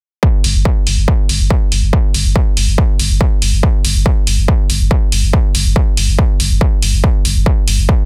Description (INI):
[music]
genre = driving peak-time techno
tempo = 141 BPM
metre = 4/4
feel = straight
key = unclear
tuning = A4 = 440 Hz
[part]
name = electronic kick drum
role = drums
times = 0.2-8.0 s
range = none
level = -16 LUFS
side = equal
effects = distortion, overdrive
[part]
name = warm sub bass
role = bass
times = 0.4-7.9 s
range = G1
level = -17 LUFS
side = equal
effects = sidechain pumping, low-pass filter
[part]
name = electronic hi-hat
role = drums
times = 0.4-7.8 s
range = none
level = -20 LUFS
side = equal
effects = overdrive, sidechain pumping on hats
[sound]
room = light reverb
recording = dense, heavily limited modern master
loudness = -13 LUFS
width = mono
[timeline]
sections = 0.2-8.1 A section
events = none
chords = none